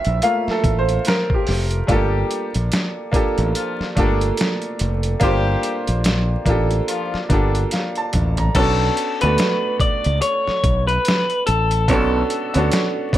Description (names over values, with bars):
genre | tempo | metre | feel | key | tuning
R&B, neo-soul | 72 BPM | 4/4 | swing 58% on 16ths | unclear | A4 = 442 Hz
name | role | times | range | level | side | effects
bright baby grand piano | accompaniment | 0.0-13.2 s | A3 to Bb5 | -22 LUFS | right 1 dB | plate reverb
boom bap sampler-style drum kit | drums | 0.0-13.2 s | crash cymbal, hi-hat, kick drum, snare drum, toms | -21 LUFS | equal | none
modern bright fingered electric bass | bass | 0.1-13.2 s | F1 to D2 | -20 LUFS | equal | none
warm horn section | stabs | 1.9-7.6 s | D3 to G4 | -27 LUFS | left 5 dB | plate reverb
electric guitar through a small old amp | melody | 8.6-12.7 s | A4 to D5 | -20 LUFS | left 2 dB | slapback echo
room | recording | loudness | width
moderate studio reverb, RT60 0.6 s | vinyl crackle | -17 LUFS | side -13 dB against mid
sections
0.0-1.9 A section; 1.9-8.6 B section; 8.6-13.2 C section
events
grand piano solo 0.0-1.9; drum fill 7.7-8.6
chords
0.0 Gm9; 8.6 Bm9